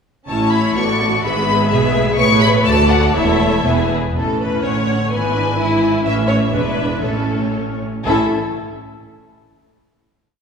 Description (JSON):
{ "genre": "quick classical-period movement for string orchestra", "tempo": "114-129 BPM", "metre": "2/4", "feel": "rubato", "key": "A major", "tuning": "A4 = 441 Hz", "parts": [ { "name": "rich studio violin section", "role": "melody", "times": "0.3-8.3 s", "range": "C#5 to C#6", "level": "-20 LUFS", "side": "left 4 dB", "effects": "none" }, { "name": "rich studio violin section", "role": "second line", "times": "0.3-8.3 s", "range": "E4 to E5", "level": "-21 LUFS", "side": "left 3 dB", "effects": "none" }, { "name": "rich studio viola section", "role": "accompaniment", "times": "0.3-8.3 s", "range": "D3 to G#4", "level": "-20 LUFS", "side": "right 1 dB", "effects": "none" }, { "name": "rich studio cello section", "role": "bass", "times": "0.3-8.3 s", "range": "D2 to B2", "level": "-22 LUFS", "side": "right 1 dB", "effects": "none" }, { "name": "rich studio double bass section", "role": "bass", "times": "0.3-8.3 s", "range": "E1 to D2", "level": "-22 LUFS", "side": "right 2 dB", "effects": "none" } ], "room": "wet scoring stage reverb, RT60 1.9 s", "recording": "heard from further back in the room", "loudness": "-14 LUFS", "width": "side -6 dB against mid", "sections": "0.3-4.2 A section; 4.2-8.1 A section; 8.1-9.1 final chord", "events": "slowing down 5.6-8.1", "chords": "0.3 A; 0.8 Bm7/A (rootless); 1.2 E/G#; 2.2 A; 2.7 D; 3.2 A/E; 3.7 E; 4.2 A; 4.6 Dmaj7/A; 5.1 E7/G#; 6.0 A; 6.5 E7; 7.0 A" }